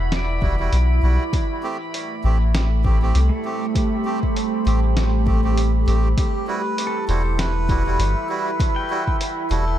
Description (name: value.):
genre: ambient dub.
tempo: 99 BPM.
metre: 4/4.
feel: swing 58% on 16ths.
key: unclear.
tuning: A4 = 440 Hz.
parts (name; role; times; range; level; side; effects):
deep dark ambient pad; sustained chords; 0.0-9.8 s; A3 to B5; -26 LUFS; right 3 dB; chorus, built-in reverb.
soft dub sub bass; bass; 0.0-9.8 s; E1 to C2; -18 LUFS; equal; tube saturation.
drifting glass-harmonics texture; texture; 0.0-6.2 s; B5; -37 LUFS; right 4 dB; chorus, built-in reverb.
lo-fi sampler-style drum kit; drums; 0.1-9.6 s; hi-hat, snare drum; -29 LUFS; equal; small room ambience, dub echo.
pedal steel guitar; arpeggios; 0.2-9.8 s; A3 to G5; -33 LUFS; left 1 dB; dub echo.
melodica; stabs; 0.4-9.7 s; G3 to G4; -29 LUFS; right 3 dB; dub echo.
electronic kick drum; drums; 0.4-9.2 s; none; -22 LUFS; equal; small room ambience.
melodica; melody; 6.2-9.8 s; G4 to C5; -27 LUFS; right 1 dB; vintage 12-bit sampler grit, dub echo.
room: digital ambience.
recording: none.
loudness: -18 LUFS.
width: side -12 dB against mid.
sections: 0.0-6.2 A section; 6.2-9.8 B section.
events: filter sweep on pedal steel guitar 0.0-6.2.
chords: 0.0 Emadd9; 1.3 Am7; 6.2 Emadd9.